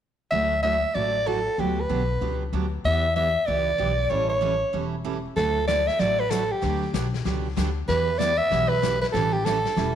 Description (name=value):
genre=country, western swing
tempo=190 BPM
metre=4/4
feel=swing 64% on 8ths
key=D major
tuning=A4 = 440 Hz
part: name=growling soprano saxophone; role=melody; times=0.3-10.0 s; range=G4 to E5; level=-23 LUFS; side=right 1 dB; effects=none
part: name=picked steel-string acoustic guitar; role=accompaniment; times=0.3-10.0 s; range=D3 to A4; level=-29 LUFS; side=right 6 dB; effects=none
part: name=upright bass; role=bass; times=0.3-10.0 s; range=E1 to E2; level=-28 LUFS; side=left 2 dB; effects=none
part: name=vintage brush drum kit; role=drums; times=5.4-10.0 s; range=brushed snare drum, hi-hat, snare drum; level=-33 LUFS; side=left 10 dB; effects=none
room=moderate echo chamber reverb, RT60 1.4 s, studio ambience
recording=1960s-style stereo with parts hard left and right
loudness=-22 LUFS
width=side -9 dB against mid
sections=0.3-5.4 A section; 5.4-10.0 B section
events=none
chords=0.3 Dadd9; 1.6 Gmaj7; 2.8 Em; 4.1 A7; 5.4 Dadd9; 6.6 Gmaj7; 7.9 Em; 9.1 A7